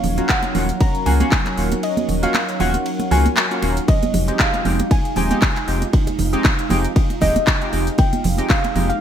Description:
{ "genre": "deep house", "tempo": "117 BPM", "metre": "4/4", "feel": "swing 55% on 16ths", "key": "unclear", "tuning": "A4 = 440 Hz", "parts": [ { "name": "soft round pluck", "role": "melody", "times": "0.0-9.0 s", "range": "Eb5 to Bb5", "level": "-25 LUFS", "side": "left 1 dB", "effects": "analog chorus, cassette tape, digital delay" }, { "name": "dark analog pad", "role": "sustained chords", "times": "0.0-9.0 s", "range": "Gb3 to Db5", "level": "-30 LUFS", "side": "right 2 dB", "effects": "chorus, sidechain pumping" }, { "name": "round analog bass", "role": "bass", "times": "0.0-8.9 s", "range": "Eb1 to Db2", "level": "-20 LUFS", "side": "equal", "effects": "tube saturation, sidechain pumping" }, { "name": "house drum kit", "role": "drums", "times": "0.0-9.0 s", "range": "handclaps, hi-hat, ride cymbal", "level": "-24 LUFS", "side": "left 1 dB", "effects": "small room ambience, gated reverb" }, { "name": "congas", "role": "percussion", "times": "0.0-8.9 s", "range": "none", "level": "-25 LUFS", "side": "right 5 dB", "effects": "none" }, { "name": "ethereal airy pad", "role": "texture", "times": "0.0-9.0 s", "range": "Gb3 to F5", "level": "-28 LUFS", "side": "right 2 dB", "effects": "ensemble chorus, built-in reverb, sidechain pumping" }, { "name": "warm analog keys", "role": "stabs", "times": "0.2-8.9 s", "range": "Ab3 to G4", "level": "-25 LUFS", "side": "equal", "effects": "chorus, sidechain pumping, ping-pong delay" }, { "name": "electronic kick drum", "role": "drums", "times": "0.3-8.6 s", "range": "none", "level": "-17 LUFS", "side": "equal", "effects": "small room ambience" } ], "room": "light reverb", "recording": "bright 1980s-style digital production", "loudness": "-16 LUFS", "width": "side -9 dB against mid", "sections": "0.0-9.0 A section", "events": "kick drops out 1.8-3.9", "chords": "0.0 Ebm9; 3.9 Ebsus2" }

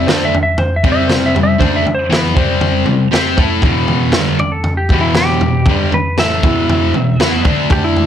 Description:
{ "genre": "garage rock duo or trio", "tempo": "118 BPM", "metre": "4/4", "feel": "straight", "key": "E minor", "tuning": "A4 = 439 Hz", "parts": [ { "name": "clean lap steel guitar", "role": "melody", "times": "0.0-8.1 s", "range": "E4 to E5", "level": "-18 LUFS", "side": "equal", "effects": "none" }, { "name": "fuzz guitar", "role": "riff", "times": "0.0-8.1 s", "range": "E2 to C5", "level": "-14 LUFS", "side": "left 1 dB", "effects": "distortion" }, { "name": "crunchy breakbeat drum kit", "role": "drums", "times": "0.1-8.1 s", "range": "kick drum, snare drum, toms", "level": "-15 LUFS", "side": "equal", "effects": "none" } ], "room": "light reverb", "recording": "none", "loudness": "-11 LUFS", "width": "side -9 dB against mid", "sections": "0.0-8.1 A section", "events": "none", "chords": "0.0 C5; 3.6 Em" }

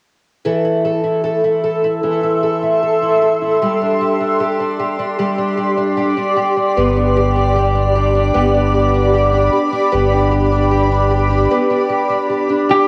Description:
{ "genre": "dream pop", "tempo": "76 BPM", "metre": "4/4", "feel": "straight", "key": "unclear", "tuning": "A4 = 441 Hz", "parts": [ { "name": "granular cloud pad", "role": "sustained chords", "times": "1.6-12.9 s", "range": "G4 to E6", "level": "-19 LUFS", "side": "equal", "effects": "built-in reverb, cassette tape" }, { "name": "fingerpicked twelve-string acoustic guitar", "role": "arpeggios", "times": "0.5-12.9 s", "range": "E3 to A4", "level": "-19 LUFS", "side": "equal", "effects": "subtle chorus, cassette tape, analog delay" }, { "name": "sub bass with octave", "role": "bass", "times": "6.8-11.5 s", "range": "G1", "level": "-19 LUFS", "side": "equal", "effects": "none" }, { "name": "electric guitar at the edge of break-up", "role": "melody", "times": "12.7-12.9 s", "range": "G4", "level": "-13 LUFS", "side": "equal", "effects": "cassette tape" } ], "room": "moderate studio reverb, RT60 0.6 s", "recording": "home recording on cassette", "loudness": "-16 LUFS", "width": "mono", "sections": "0.5-12.9 A section", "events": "none", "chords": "0.5 Am/E; 3.6 Csus2; 6.8 G" }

